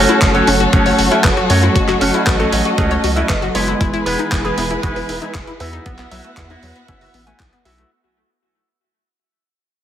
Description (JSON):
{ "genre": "italo disco", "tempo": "117 BPM", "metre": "4/4", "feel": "straight", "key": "unclear", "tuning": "A4 = 440 Hz", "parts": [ { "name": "dark studio string section", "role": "sustained chords", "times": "0.0-7.9 s", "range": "E3 to F#5", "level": "-19 LUFS", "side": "left 1 dB", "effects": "none" }, { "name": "electric guitar with an envelope filter", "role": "stabs", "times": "0.0-7.9 s", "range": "G#3 to G#5", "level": "-18 LUFS", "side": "right 2 dB", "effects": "digital delay" }, { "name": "round analog bass", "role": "bass", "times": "0.0-7.8 s", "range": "E1 to F#2", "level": "-21 LUFS", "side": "equal", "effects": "tube saturation" }, { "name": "analog pluck", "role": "arpeggios", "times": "0.1-7.8 s", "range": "F#3 to C#5", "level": "-21 LUFS", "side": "left 4 dB", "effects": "chorus, digital delay" }, { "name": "dusty soul sampler-style drum kit", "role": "drums", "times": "0.1-7.9 s", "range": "handclaps, hi-hat", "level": "-21 LUFS", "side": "right 1 dB", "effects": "overdrive, small room ambience" }, { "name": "electronic kick drum", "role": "drums", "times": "0.2-7.5 s", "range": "none", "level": "-19 LUFS", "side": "equal", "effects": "overdrive, small room ambience" } ], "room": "light reverb", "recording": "heavily compressed radio sound", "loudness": "-13 LUFS", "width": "side -10 dB against mid", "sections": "0.0-7.9 A section", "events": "fade-out 0.0-7.9", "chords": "0.0 F#m; 3.8 E; 5.9 Bsus4" }